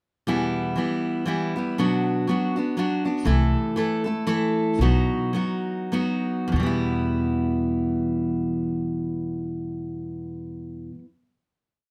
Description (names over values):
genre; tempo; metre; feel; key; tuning
acoustic folk duo or small band; 94-121 BPM; 3/4; swing 56% on 8ths; E minor; A4 = 440 Hz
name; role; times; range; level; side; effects
picked steel-string acoustic guitar; accompaniment; 0.3-11.1 s; E2 to A4; -26 LUFS; equal; none
upright bass; bass; 3.3-10.9 s; B1 to E2; -28 LUFS; equal; none
room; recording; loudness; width
light reverb; none; -25 LUFS; mono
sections
0.3-6.5 verse; 6.5-10.4 final chord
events
slowing down 3.3-6.5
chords
0.3 Em; 1.8 Bm; 3.3 Am/C; 4.8 B; 6.5 Em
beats
| 0.28 0.78 1.27 | 1.77 2.27 2.76 | 3.26 3.76 4.27 | 4.80 5.34 5.92 | 6.54 7.17 7.81 | 8.45 9.09 9.72